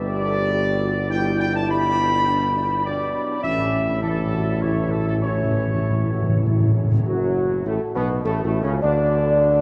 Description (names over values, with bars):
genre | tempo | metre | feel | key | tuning
classical | 102 BPM | 3/4 | straight | D major | A4 = 439 Hz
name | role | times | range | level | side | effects
dark trumpet section | melody | 0.0-9.6 s | F#3 to B5 | -27 LUFS | equal | none
mellow French horn section | sustained chords | 0.0-9.6 s | C#4 to D5 | -27 LUFS | equal | none
warm trombone section | sustained chords | 0.0-9.6 s | F#2 to G3 | -32 LUFS | equal | none
mellow tuba | bass | 0.0-9.6 s | F#1 to D2 | -27 LUFS | equal | none
timpani | percussion | 3.4-7.1 s | A2 | -26 LUFS | equal | none
room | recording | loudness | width
wet huge ambient reverb, RT60 7.7 s | in a vast, echoing space | -21 LUFS | mono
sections
0.0-7.1 A section; 7.1-9.6 B section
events
timpani fill 3.4-7.1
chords
0.0 G; 3.4 A; 7.1 D/F#